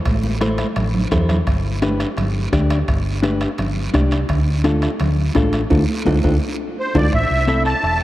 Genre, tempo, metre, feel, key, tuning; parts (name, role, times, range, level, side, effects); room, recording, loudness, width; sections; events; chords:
latin, cumbia; 170 BPM; 4/4; straight; A minor; A4 = 440 Hz
hollow-body short-scale fingered electric bass; bass; 0.1-8.0 s; E1 to E2; -20 LUFS; equal
bombo; percussion; 0.1-8.0 s; -24 LUFS; equal
congas; percussion; 0.1-8.0 s; -25 LUFS; right 1 dB
guiro; percussion; 0.1-8.0 s; -35 LUFS; right 3 dB
timbales; percussion; 0.1-7.0 s; -31 LUFS; right 3 dB
clean electric guitar; accompaniment; 0.4-7.7 s; C4 to D5; -22 LUFS; left 2 dB
musette accordion; melody; 6.8-8.0 s; C5 to A5; -18 LUFS; right 1 dB
moderate huge ambient reverb, RT60 7.2 s; in a vast, echoing space; -16 LUFS; side -15 dB against mid
0.0-7.1 A section
drum fill 0.1-1.5, 6.2-7.1; band accent 5.7-7.1; clean electric guitar fill 6.1-7.1
0.0 Am; 1.5 G; 4.3 Dm; 7.1 Am